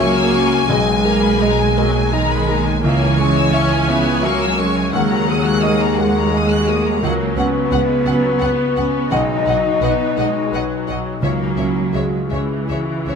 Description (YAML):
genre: cinematic, emotional film score for orchestra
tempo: 85 BPM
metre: 3/4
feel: rubato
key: C# dorian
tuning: A4 = 440 Hz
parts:
  - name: dark French horn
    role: melody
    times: 0.0-13.2 s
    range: D#4 to D#5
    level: -22 LUFS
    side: left 5 dB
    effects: none
  - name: rich studio violin section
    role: melody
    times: 0.0-13.2 s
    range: E5 to G#5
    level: -26 LUFS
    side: left 3 dB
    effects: none
  - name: warm studio violin section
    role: second line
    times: 0.0-13.2 s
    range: C#5 to F#6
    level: -24 LUFS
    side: left 3 dB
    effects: none
  - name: clear concert grand piano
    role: accompaniment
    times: 0.0-13.2 s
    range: B1 to E5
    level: -22 LUFS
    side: right 1 dB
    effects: none
  - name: rich studio viola section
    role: accompaniment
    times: 0.0-13.2 s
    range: E3 to C#4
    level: -24 LUFS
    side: right 2 dB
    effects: none
  - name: concert harp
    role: arpeggios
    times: 0.0-13.2 s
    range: B2 to E5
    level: -24 LUFS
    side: left 6 dB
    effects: none
  - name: warm studio cello section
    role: bass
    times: 0.0-13.2 s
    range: D#3 to D#4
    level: -22 LUFS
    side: right 3 dB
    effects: none
  - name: warm studio double bass section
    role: bass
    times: 0.0-13.1 s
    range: B1 to D#2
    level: -24 LUFS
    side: right 4 dB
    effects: none
room: light reverb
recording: none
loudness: -14 LUFS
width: side -6 dB against mid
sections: 0.0-13.2 A section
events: none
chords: 0.0 C#m; 0.7 G#madd9/B; 2.8 C#m; 4.9 D#m; 7.0 F#sus4/C#; 9.1 B; 11.2 C#m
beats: | 0.69 1.41 2.13 | 2.84 3.53 4.24 | 4.94 5.64 6.33 | 7.03 7.71 8.42 | 9.12 9.82 10.53 | 11.22 11.93 12.68